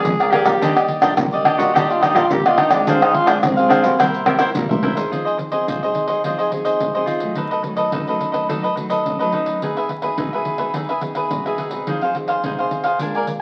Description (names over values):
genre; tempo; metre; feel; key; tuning
samba and choro; 106 BPM; 4/4; straight; C minor; A4 = 439 Hz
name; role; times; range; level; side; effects
breathy tenor saxophone; second line; 0.0-4.0 s; C4 to Ab4; -22 LUFS; equal; none
nylon-string guitar; accompaniment; 0.0-13.4 s; F2 to Ab4; -29 LUFS; equal; none
rich cello; bass; 0.0-4.9 s; C2 to C3; -29 LUFS; equal; none
egg shaker, surdo, pandeiro and tamborim; percussion; 0.0-13.4 s; none; -23 LUFS; equal; none
cavaquinho; accompaniment; 0.2-13.4 s; D4 to Ab5; -22 LUFS; equal; none
room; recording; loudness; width
wet studio reverb, RT60 0.8 s; very old 78 rpm record, vinyl crackle; -19 LUFS; mono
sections
0.0-5.1 A section; 5.1-13.4 B section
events
tenor saxophone solo 0.0-5.1; drum fill 4.3-5.1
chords
0.0 Bb7; 0.6 Ebmaj7; 2.9 Dm7b5; 4.0 C7; 5.1 Fm7; 7.4 B7; 9.6 Emaj7; 11.9 Fm7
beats
0.05 | 0.62 1.18 1.74 2.30 | 2.86 3.42 3.99 4.55 | 5.11 5.67 6.24 6.80 | 7.37 7.93 8.49 9.06 | 9.62 10.19 10.75 11.31 | 11.88 12.44 13.01